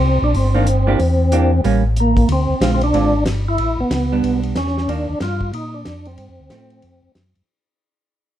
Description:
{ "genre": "soul jazz organ trio", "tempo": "185 BPM", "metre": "4/4", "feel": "swing 62% on 8ths", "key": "unclear", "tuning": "A4 = 441 Hz", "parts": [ { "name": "percussive tonewheel organ", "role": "melody", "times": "0.0-7.1 s", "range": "Bb3 to F4", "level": "-20 LUFS", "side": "equal", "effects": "slow rotary speaker, overdrive, chorus vibrato, plate reverb" }, { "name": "mellow tonewheel organ", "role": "bass", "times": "0.0-7.4 s", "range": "G1 to Bb2", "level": "-18 LUFS", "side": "equal", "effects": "slow rotary speaker" }, { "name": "warm soul drum kit", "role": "drums", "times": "0.3-7.4 s", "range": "hi-hat, kick drum, ride cymbal, snare drum", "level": "-25 LUFS", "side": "equal", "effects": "none" }, { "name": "vintage hollow-body jazz guitar", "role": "accompaniment", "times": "0.5-7.0 s", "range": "D3 to G4", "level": "-21 LUFS", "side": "right 4 dB", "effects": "none" } ], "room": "light reverb", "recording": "dark, warm production", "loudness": "-15 LUFS", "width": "side -12 dB against mid", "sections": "0.0-2.3 A section; 2.3-7.5 B section", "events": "fade-out 2.3-7.5", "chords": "0.0 C7sus2; 1.0 Em7b5; 1.6 A7b9; 2.3 Dm7b5; 3.6 A9sus4; 4.9 Ebmaj9; 6.2 G9sus4", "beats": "0.02 0.34 0.67 | 0.99 1.32 1.64 1.96 | 2.29 2.61 2.94 3.26 | 3.58 3.91 4.23 4.56 | 4.88 5.21 5.53 5.86 | 6.18 6.50 6.83 7.15" }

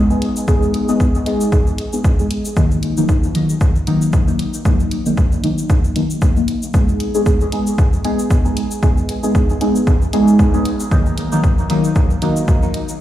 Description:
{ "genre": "dub techno", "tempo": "115 BPM", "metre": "4/4", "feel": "swing 56% on 16ths", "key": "Eb minor", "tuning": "A4 = 441 Hz", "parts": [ { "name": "deep mellow chord stab", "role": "stabs", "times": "0.0-12.8 s", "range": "Eb3 to Ab4", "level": "-17 LUFS", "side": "equal", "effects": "chorus, phaser, sidechain pumping, dub echo" }, { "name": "electronic shaker and hi-hat", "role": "drums", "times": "0.1-13.0 s", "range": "none", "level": "-32 LUFS", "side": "left 2 dB", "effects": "none" }, { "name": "electronic kick drum", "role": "drums", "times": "0.5-12.6 s", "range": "none", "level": "-15 LUFS", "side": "equal", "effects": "none" } ], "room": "light reverb", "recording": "played on a big sound system in a bare room, large studio reverb", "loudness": "-14 LUFS", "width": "side -13 dB against mid", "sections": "0.0-2.6 A section; 2.6-13.0 A section", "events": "none", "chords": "0.0 Abm; 2.6 Ebm; 6.7 Abm; 10.9 Ebm", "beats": "| 0.48 1.00 1.52 2.04 | 2.57 3.09 3.61 4.13 | 4.65 5.17 5.70 6.22 | 6.74 7.26 7.78 8.31 | 8.83 9.35 9.87 10.39 | 10.91 11.44 11.96 12.48" }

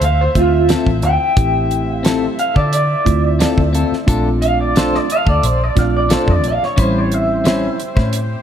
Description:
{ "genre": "straight-eighth soul blues", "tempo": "89 BPM", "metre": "4/4", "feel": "straight", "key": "D minor", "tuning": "A4 = 441 Hz", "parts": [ { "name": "electric guitar through a small old amp", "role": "melody", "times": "0.0-8.4 s", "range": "F4 to G5", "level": "-18 LUFS", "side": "right 1 dB", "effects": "tremolo" }, { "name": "mellow horn section", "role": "sustained chords", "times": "0.0-8.4 s", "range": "B#3 to E5", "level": "-29 LUFS", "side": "left 1 dB", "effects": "none" }, { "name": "clean electric guitar", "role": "stabs", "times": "0.0-8.2 s", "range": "G3 to B#4", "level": "-22 LUFS", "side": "left 6 dB", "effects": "none" }, { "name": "vintage muted fingered electric bass", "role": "bass", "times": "0.0-8.3 s", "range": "A1 to D3", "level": "-18 LUFS", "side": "equal", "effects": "none" }, { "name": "damped 70s drum kit", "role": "drums", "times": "0.0-8.3 s", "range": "hi-hat, kick drum, snare drum", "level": "-17 LUFS", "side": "equal", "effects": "none" }, { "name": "mellow tine electric piano", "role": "accompaniment", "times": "0.4-7.8 s", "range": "G3 to E5", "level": "-21 LUFS", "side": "moving between equal and right 10 dB", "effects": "auto-pan" } ], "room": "light reverb", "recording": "faint mains hum", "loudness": "-13 LUFS", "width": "side -9 dB against mid", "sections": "0.0-8.4 A section", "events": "clean electric guitar solo 0.0-8.4", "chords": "0.0 Dm7; 4.1 Bbmaj7; 6.8 A7#9", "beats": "0.01 0.69 | 1.37 2.04 2.72 3.40 | 4.08 4.75 5.43 6.11 | 6.78 7.46 8.13" }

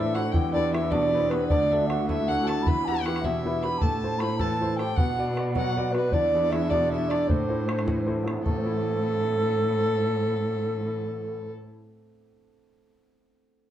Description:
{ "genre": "celtic folk, Celtic jig", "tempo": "104 BPM (dotted quarters)", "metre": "6/8", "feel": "straight", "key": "A dorian", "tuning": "A4 = 441 Hz", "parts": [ { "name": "mellow hollow baroque flute", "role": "melody", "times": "0.0-11.5 s", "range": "A4 to B5", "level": "-27 LUFS", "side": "right 1 dB", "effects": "plate reverb" }, { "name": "hammered dulcimer", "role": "second line", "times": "0.0-12.9 s", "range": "A3 to B4", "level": "-33 LUFS", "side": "right 2 dB", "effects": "none" }, { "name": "warm fiddle", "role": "second line", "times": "0.0-11.5 s", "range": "A4 to B5", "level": "-34 LUFS", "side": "left 5 dB", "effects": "none" }, { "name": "clear upright piano", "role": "accompaniment", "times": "0.0-11.8 s", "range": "A1 to D5", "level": "-31 LUFS", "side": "equal", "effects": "none" }, { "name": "rich cello", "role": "bass", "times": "0.0-11.5 s", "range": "D2 to B2", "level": "-30 LUFS", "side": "left 1 dB", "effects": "none" }, { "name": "bodhran", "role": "percussion", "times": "0.2-8.6 s", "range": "none", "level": "-29 LUFS", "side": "equal", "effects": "none" } ], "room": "wet studio reverb, RT60 0.7 s", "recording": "heard from further back in the room", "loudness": "-23 LUFS", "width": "side -11 dB against mid", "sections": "0.0-8.4 A section; 8.4-10.8 B section", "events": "none", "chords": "0.3 Em; 1.5 D; 2.7 Em; 3.8 Am; 5.0 Bm; 6.1 E7; 7.3 Am", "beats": "| 0.34 0.92 | 1.50 2.08 | 2.65 3.23 | 3.81 4.39 | 4.97 5.55 | 6.13 6.71 | 7.29 7.87 | 8.44 9.02 | 9.60 10.18" }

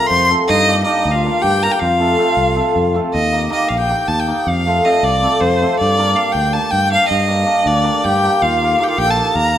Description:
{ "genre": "balkan folk", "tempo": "318 BPM (eighths)", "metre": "7/8", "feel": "straight", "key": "unclear", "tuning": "A4 = 440 Hz", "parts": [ { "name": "clear violin", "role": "melody", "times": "0.0-9.6 s", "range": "C5 to C6", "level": "-16 LUFS", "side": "equal", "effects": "none" }, { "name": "mellow accordion", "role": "second line", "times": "0.0-3.0, 7.6-9.5 s", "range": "D4 to C5", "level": "-22 LUFS", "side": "left 2 dB", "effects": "none" }, { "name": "hammered dulcimer", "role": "accompaniment", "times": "0.0-9.3 s", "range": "A3 to Bb4", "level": "-18 LUFS", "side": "equal", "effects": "none" }, { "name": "overdriven fingered electric bass", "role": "bass", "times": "0.1-9.6 s", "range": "Bb1 to G2", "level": "-20 LUFS", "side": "equal", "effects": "none" } ], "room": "wet recital hall reverb, RT60 1.4 s", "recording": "minimal, uncompressed stereo recording", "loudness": "-13 LUFS", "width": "side -10 dB against mid", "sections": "0.0-3.1 A section; 3.1-9.6 A section", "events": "none", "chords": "0.5 Gm; 1.8 F; 3.1 Eb; 4.5 F; 5.8 Gm; 8.4 Eb", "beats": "0.09 0.28 | 0.47 0.67 0.85 1.05 1.24 1.43 1.62 | 1.81 2.00 2.19 2.38 2.56 2.75 2.94 | 3.13 3.32 3.51 3.70 3.89 4.08 4.27 | 4.46 4.65 4.84 5.03 5.21 5.40 5.59 | 5.78 5.97 6.16 6.35 6.54 6.72 6.91 | 7.10 7.29 7.48 7.66 7.85 8.04 8.23 | 8.42 8.60 8.79 8.98 9.17 9.36 9.54" }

